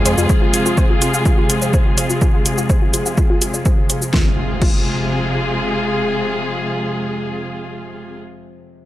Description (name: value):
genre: melodic techno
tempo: 125 BPM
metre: 4/4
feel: straight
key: F minor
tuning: A4 = 441 Hz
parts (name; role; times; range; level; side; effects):
- dark chamber string section; sustained chords; 0.0-8.2 s; C3 to Ab4; -20 LUFS; equal; sidechain pumping, low-pass filter
- warbly dusty pluck; arpeggios; 0.0-4.8 s; F4 to F5; -25 LUFS; equal; chorus, vintage 12-bit sampler grit, sidechain pumping, tape echo
- bowed-like drone; drone; 0.0-8.2 s; F2 to C3; -26 LUFS; equal; built-in reverb, sidechain pumping
- downlifter and impact; sound effects; 0.0-0.3, 4.1-8.2 s; none; -28 LUFS; equal; none
- deep house drum kit; drums; 0.1-4.8 s; crash cymbal, hi-hat, shaker, snare drum; -22 LUFS; equal; overdrive, sidechain pumping on cymbals, sidechain pumping on perc, sidechain pumping on hats
- electronic kick drum; drums; 0.3-4.8 s; none; -16 LUFS; equal; overdrive
room: light reverb, digital ambience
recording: dry, gritty hardware recording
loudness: -15 LUFS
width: side -14 dB against mid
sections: 0.0-4.1 A section; 4.1-8.0 B section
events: filter sweep on synth arpeggio sound 0.0-4.1; filter sweep on string section 0.0-4.1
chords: 0.0 Fm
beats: | 0.30 0.78 1.26 1.74 | 2.22 2.70 3.18 3.66 | 4.14 4.62 5.10 5.58 | 6.06 6.54 7.02 7.50